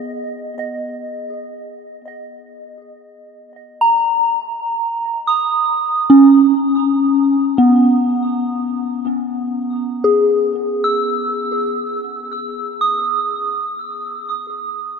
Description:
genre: ambient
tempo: free time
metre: none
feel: none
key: unclear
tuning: A4 = 438 Hz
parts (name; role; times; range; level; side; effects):
- soft synth bell; solo; 0.0-15.0 s; B3 to E6; -15 LUFS; equal; chorus, phaser, tape echo
room: wet huge ambient reverb, RT60 8.3 s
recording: none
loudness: -14 LUFS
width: side -6 dB against mid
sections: 0.0-1.2 A section; 1.2-15.0 B section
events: none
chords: 0.0 B; 1.2 A#madd11; 7.1 E6; 13.0 C#sus2 (rootless)

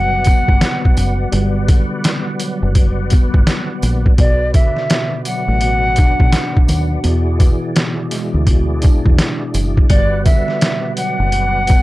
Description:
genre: hip hop, boom-bap hip-hop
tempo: 84 BPM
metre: 4/4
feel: swing 63% on 16ths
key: unclear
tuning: A4 = 441 Hz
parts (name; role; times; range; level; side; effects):
- silver concert flute; melody; 0.0-11.8 s; D5 to F#5; -19 LUFS; equal; high-pass filter, low-pass filter, analog delay
- mellow tine electric piano; accompaniment; 0.0-11.8 s; B2 to D4; -23 LUFS; equal; medium stereo tremolo, cassette tape, high-pass filter, low-pass filter
- percussive tonewheel organ; sustained chords; 0.0-11.8 s; E3 to F#5; -26 LUFS; equal; chorus vibrato, slow rotary speaker, high-pass filter, low-pass filter
- deep dub fingered electric bass; bass; 0.0-11.7 s; F#1 to E2; -17 LUFS; equal; tube saturation
- trip hop sampler-style drum kit; drums; 0.2-11.8 s; hi-hat, kick drum, snare drum; -13 LUFS; equal; none
- tambourine; percussion; 0.3-11.8 s; none; -36 LUFS; right 2 dB; none
room: little or no reverb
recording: dry, gritty hardware recording, cassette tape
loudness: -12 LUFS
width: side -18 dB against mid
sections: 0.0-11.8 A section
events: none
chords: 0.0 Gmaj7; 4.2 Bm; 7.0 E7; 9.9 Gmaj7

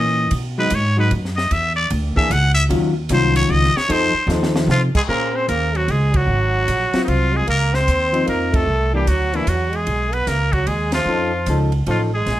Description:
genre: jazz, small-group swing and bop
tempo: 151 BPM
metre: 3/4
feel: swing 66% on 8ths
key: Bb minor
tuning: A4 = 440 Hz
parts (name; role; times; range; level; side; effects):
- trumpet with straight mute; melody; 0.0-12.4 s; Eb4 to Gb5; -21 LUFS; left 1 dB; none
- vintage hollow-body jazz guitar; accompaniment; 0.0-12.1 s; Eb3 to C5; -22 LUFS; left 2 dB; none
- upright bass; bass; 0.0-12.4 s; Ab1 to C3; -20 LUFS; equal; none
- compact cocktail drum kit; drums; 0.3-12.4 s; crash cymbal, hi-hat, kick drum, ride cymbal, snare drum; -27 LUFS; equal; none
- bright trombone; second line; 4.7-12.4 s; Eb3 to C4; -24 LUFS; right 3 dB; none
room: light reverb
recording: none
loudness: -16 LUFS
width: side -14 dB against mid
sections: 0.0-5.1 A section; 5.1-12.4 B section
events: muted trumpet solo 0.0-5.1; drum fill 4.3-4.7; band accent 6.1, 8.5, 10.9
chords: 0.3 B6; 1.5 E7(no3); 2.7 Ebm9; 3.9 F7; 5.1 Bbm9; 6.3 Ab13; 7.5 Dbmaj9; 8.7 C9; 9.9 B; 11.1 Faug7

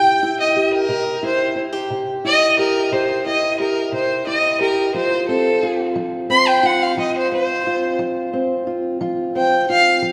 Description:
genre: acoustic country blues, solo or duo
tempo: 59 BPM (dotted quarters)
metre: 12/8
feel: straight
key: C mixolydian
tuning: A4 = 440 Hz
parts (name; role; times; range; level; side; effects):
- warm fiddle; melody; 0.0-10.0 s; A4 to C6; -20 LUFS; equal; none
- fingerpicked old ladder-braced acoustic guitar; accompaniment; 0.0-10.1 s; C3 to G4; -23 LUFS; equal; none
room: wet church reverb, RT60 2.8 s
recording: recorded in a church or concert hall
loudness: -18 LUFS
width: mono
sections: 0.0-10.1 A section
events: none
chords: 0.0 C; 5.0 F5

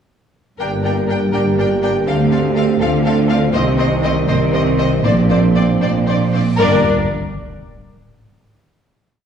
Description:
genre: cinematic, epic orchestral film score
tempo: 80 BPM (dotted quarters)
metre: 6/8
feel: uneven beats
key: G minor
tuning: A4 = 441 Hz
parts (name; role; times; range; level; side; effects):
- clear symphonic violin section; melody; 0.6-6.9 s; D5 to G5; -24 LUFS; left 2 dB; none
- rich studio violin section; second line; 0.6-6.9 s; A4 to C5; -24 LUFS; left 2 dB; none
- clear symphonic viola section; accompaniment; 0.6-6.9 s; C4 to D4; -25 LUFS; equal; none
- dark French horn section; sustained chords; 0.6-6.8 s; Bb3 to G4; -22 LUFS; equal; none
- mellow trombone section; sustained chords; 0.6-6.8 s; D3 to Bb3; -22 LUFS; right 2 dB; none
- clear symphonic double bass section; bass; 0.6-6.9 s; G1 to D2; -19 LUFS; right 2 dB; none
- rich symphonic cello section; bass; 0.6-6.9 s; G2 to D3; -20 LUFS; equal; none
- reverse cymbal and sub drop; sound effects; 6.4-8.2 s; none; -30 LUFS; left 2 dB; none
room: wet scoring stage reverb, RT60 1.6 s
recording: heard from further back in the room, studio reverb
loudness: -13 LUFS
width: side -8 dB against mid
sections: 0.6-6.6 theme; 6.6-8.2 final chord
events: reverse cymbal 6.4; impact 6.6-8.2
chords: 0.6 Gm; 2.1 Dm7; 3.5 Cm; 5.0 Bbadd9; 6.6 Gm

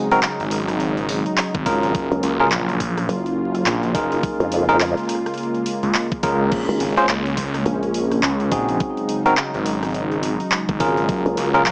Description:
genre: glitch hop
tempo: 105 BPM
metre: 4/4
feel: swing 60% on 16ths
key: unclear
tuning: A4 = 440 Hz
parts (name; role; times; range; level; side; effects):
- warm analog pad; sustained chords; 0.0-11.7 s; Db3 to F4; -24 LUFS; equal; chorus, sidechain pumping
- bell-like tine electric piano; stabs; 0.0-11.6 s; C4 to C5; -20 LUFS; equal; sidechain pumping, tape echo
- drum and bass drum kit; drums; 0.1-11.7 s; crash cymbal, handclaps, hi-hat, rim click; -24 LUFS; equal; overdrive
- phased detuned saw bass; bass; 0.4-11.7 s; Gb1 to Db2; -23 LUFS; equal; phaser, tube saturation
- electronic kick drum; drums; 1.5-11.2 s; none; -24 LUFS; equal; overdrive
- vowel-sweep wobble bass; bass; 2.1-11.4 s; Gb1 to F2; -20 LUFS; equal; chorus
room: light reverb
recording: dry, gritty hardware recording, vinyl crackle, small speaker sound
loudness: -18 LUFS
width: side -31 dB against mid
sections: 0.0-11.7 A section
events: none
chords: 0.0 Ab7(no3); 1.9 Gbmaj7; 4.2 Db6; 6.5 Ab7; 11.1 Gbmaj7

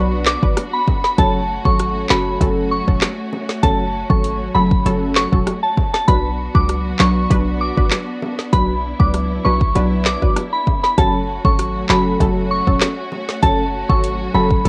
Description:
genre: dancehall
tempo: 98 BPM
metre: 4/4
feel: straight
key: F# minor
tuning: A4 = 439 Hz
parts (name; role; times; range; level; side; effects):
- punchy chord stab; accompaniment; 0.0-14.7 s; F#3 to B4; -23 LUFS; equal; chorus, phaser, sidechain pumping
- rich studio string section; sustained chords; 0.0-14.7 s; A3 to F#4; -32 LUFS; equal; sidechain pumping
- short 808-style bass; bass; 0.0-14.7 s; E1 to C#2; -24 LUFS; equal; none
- soft synth bell; melody; 0.3-14.5 s; A5 to D6; -23 LUFS; equal; chorus, cassette tape, analog delay
- afro-pop drum kit; drums; 0.3-14.7 s; handclaps, hi-hat, kick drum, rim click, snare drum; -20 LUFS; equal; cassette tape
- bongos; percussion; 0.6-14.7 s; none; -32 LUFS; equal; none
room: light reverb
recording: home recording on cassette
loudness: -17 LUFS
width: mono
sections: 0.0-14.7 A section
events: none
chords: 0.0 Bm; 1.2 F#m; 6.1 Bm; 11.0 F#m

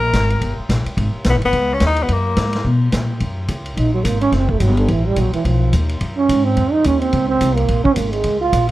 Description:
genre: jazz, small-group swing and bop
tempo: 214 BPM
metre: 4/4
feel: swing 59% on 8ths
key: unclear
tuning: A4 = 440 Hz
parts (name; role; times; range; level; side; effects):
- clear tenor saxophone; melody; 0.0-2.7 s; A#3 to A#4; -19 LUFS; left 3 dB; none
- upright bass; bass; 0.0-8.7 s; F#1 to B2; -18 LUFS; equal; none
- vintage drum kit; drums; 0.1-8.7 s; hi-hat, kick drum, ride cymbal, snare drum; -25 LUFS; equal; none
- breathy trombone; second line; 3.8-8.7 s; D3 to E#4; -17 LUFS; right 4 dB; none
room: light reverb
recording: dark, warm production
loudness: -15 LUFS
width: side -16 dB against mid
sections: 0.0-3.2 A section; 3.2-8.7 B section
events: trombone solo 3.2-8.7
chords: 0.4 Gm; 1.0 G#m; 2.1 F#add9; 4.3 F#7#9; 5.5 B6; 6.6 F5; 7.7 A#m7

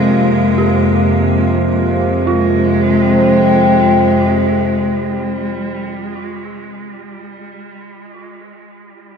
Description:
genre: dark ambient drone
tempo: free time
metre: none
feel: none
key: F minor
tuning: A4 = 442 Hz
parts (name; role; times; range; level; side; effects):
- warm cello; melody; 0.0-5.5 s; Ab3; -18 LUFS; left 1 dB; dub echo
- dark analog pad; sustained chords; 0.0-5.9 s; F4 to G5; -18 LUFS; left 2 dB; lush chorus
- bowed-like drone; drone; 0.0-5.5 s; F2 to C3; -16 LUFS; right 2 dB; built-in reverb
- icy glass pad; texture; 0.0-2.3 s; Bb3 to Bb4; -22 LUFS; equal; chorus, built-in reverb
- dark detuned synth bell; arpeggios; 0.6-9.2 s; F4 to G4; -25 LUFS; right 4 dB; chorus, dub echo
room: wet echo chamber reverb, RT60 2.2 s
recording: echo-heavy mix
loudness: -11 LUFS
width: side -6 dB against mid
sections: 0.0-2.3 A section; 2.3-7.5 B section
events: none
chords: 0.0 Bb5

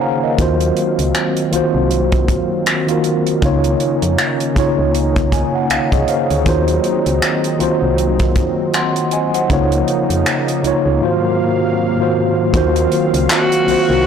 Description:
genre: contemporary R&B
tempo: 79 BPM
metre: 4/4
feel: swing 58% on 16ths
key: Eb dorian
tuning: A4 = 440 Hz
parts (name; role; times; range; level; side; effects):
- mellow tine electric piano; accompaniment; 0.0-14.1 s; Ab2 to C6; -16 LUFS; equal; medium stereo tremolo
- warm analog pad; sustained chords; 0.0-14.1 s; C3 to F5; -23 LUFS; right 1 dB; chorus
- solid FM bass; bass; 0.4-14.1 s; C2 to F2; -19 LUFS; equal; none
- tight funk drum kit; drums; 0.4-13.9 s; finger snaps, handclaps, hi-hat, kick drum; -19 LUFS; equal; none
- raspy alto saxophone; melody; 13.3-14.1 s; Gb4; -15 LUFS; equal; none
room: light reverb, studio reverb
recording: blown-out, overdriven recording, overdrive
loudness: -13 LUFS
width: side -7 dB against mid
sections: 0.0-12.5 A section; 12.5-14.1 B section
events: break 0.0-0.4; tine electric piano fill 0.0-0.4, 4.9-6.5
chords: 0.4 Ebm69; 3.4 Db69; 6.5 Ebm69; 9.5 Db69; 11.0 Ab13; 12.5 Ebm69

